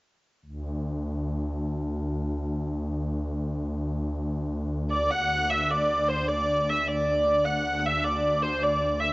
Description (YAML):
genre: medieval dance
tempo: 103 BPM (dotted quarters)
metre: 6/8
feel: straight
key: D mixolydian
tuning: A4 = 440 Hz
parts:
  - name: pipe organ, strings celeste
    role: drone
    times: 0.4-9.1 s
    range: D2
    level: -29 LUFS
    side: left 1 dB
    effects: none
  - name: warm hurdy-gurdy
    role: melody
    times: 4.9-9.1 s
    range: C5 to F#5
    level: -23 LUFS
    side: equal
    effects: cassette tape
room: wet spring reverb, RT60 2.9 s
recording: home recording on cassette, nothing above 7.7 kHz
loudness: -24 LUFS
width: side -21 dB against mid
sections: 0.5-5.1 A section; 5.1-9.1 B section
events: none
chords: none